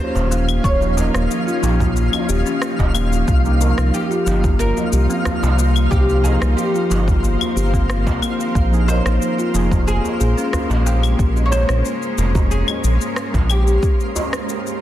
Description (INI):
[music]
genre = organic downtempo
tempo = 91 BPM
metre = 4/4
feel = straight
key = Bb dorian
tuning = A4 = 440 Hz
[part]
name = oud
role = melody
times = 0.0-13.8 s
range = G4 to Db5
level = -25 LUFS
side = equal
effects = tape echo
[part]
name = granular cloud pad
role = sustained chords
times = 0.1-14.8 s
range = F3 to C5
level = -26 LUFS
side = equal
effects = built-in reverb, sidechain pumping
[part]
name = kalimba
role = arpeggios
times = 0.0-11.2 s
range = Bb3 to Ab4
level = -24 LUFS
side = left 2 dB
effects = vintage 12-bit sampler grit, digital delay
[part]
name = twinkling granular texture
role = texture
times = 0.0-13.8 s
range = F4 to F5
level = -31 LUFS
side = left 1 dB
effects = built-in reverb
[part]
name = djembe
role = percussion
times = 0.1-14.3 s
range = none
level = -28 LUFS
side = right 1 dB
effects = none
[part]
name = round analog bass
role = bass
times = 0.2-13.8 s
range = Eb1 to C2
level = -17 LUFS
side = equal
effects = none
[part]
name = electronic cabasa, claves and rim click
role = drums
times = 0.2-14.8 s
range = none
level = -27 LUFS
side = left 3 dB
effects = soft clipping on snare
[part]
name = electronic kick drum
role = drums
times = 0.6-14.0 s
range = none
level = -19 LUFS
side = equal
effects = none
[part]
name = muted felt-like synth keys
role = accompaniment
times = 0.8-9.8 s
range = F3 to Bb4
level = -26 LUFS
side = right 4 dB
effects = chorus, sidechain pumping, digital delay
[sound]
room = light reverb, digital ambience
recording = dense, heavily limited modern master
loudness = -15 LUFS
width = side -13 dB against mid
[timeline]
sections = 0.0-14.8 A section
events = none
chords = 0.0 Eb9; 3.3 Cm7; 8.6 Bbm9; 13.8 Fm7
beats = | 0.64 1.30 1.96 2.62 | 3.28 3.94 4.60 5.26 | 5.92 6.58 7.23 7.89 | 8.55 9.21 9.87 10.53 | 11.19 11.85 12.51 13.17 | 13.83 14.49